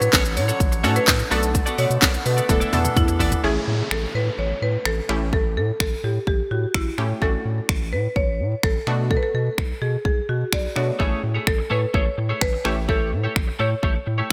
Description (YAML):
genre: dance-pop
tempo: 127 BPM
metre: 4/4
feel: straight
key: A major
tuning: A4 = 441 Hz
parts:
  - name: marimba with hard mallets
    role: melody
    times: 0.0-14.3 s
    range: E4 to D5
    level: -28 LUFS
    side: equal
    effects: none
  - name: analog pluck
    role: accompaniment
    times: 0.0-13.4 s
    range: A3 to A4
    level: -30 LUFS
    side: equal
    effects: chorus, sidechain pumping
  - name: accordion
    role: sustained chords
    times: 0.0-3.4 s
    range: D3 to C#5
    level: -32 LUFS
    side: equal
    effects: sidechain pumping
  - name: twelve-string electric guitar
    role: riff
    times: 0.0-3.4, 11.0-14.3 s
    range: A3 to D5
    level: -30 LUFS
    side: equal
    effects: analog chorus
  - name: saturated sub bass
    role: bass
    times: 0.0-14.3 s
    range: E1 to B2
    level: -27 LUFS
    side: equal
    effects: sidechain pumping
  - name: house drum kit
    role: drums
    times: 0.0-14.3 s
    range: finger snaps, handclaps, hi-hat, kick drum, shaker, snare drum, toms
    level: -24 LUFS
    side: equal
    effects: gated reverb
  - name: downlifter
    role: sound effects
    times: 3.4-7.2 s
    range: none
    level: -36 LUFS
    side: equal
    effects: none
room: light reverb, digital ambience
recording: bright 1980s-style digital production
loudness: -22 LUFS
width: mono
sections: 0.0-3.4 A section; 3.4-14.3 B section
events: drum fill 2.5-3.4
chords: 0.0 Dmaj7/A; 1.3 Bm7; 2.5 E7sus4; 3.4 Amaj7; 5.1 A7; 7.2 Dmaj7/A; 8.9 Bm7; 11.0 Amaj7; 12.7 A7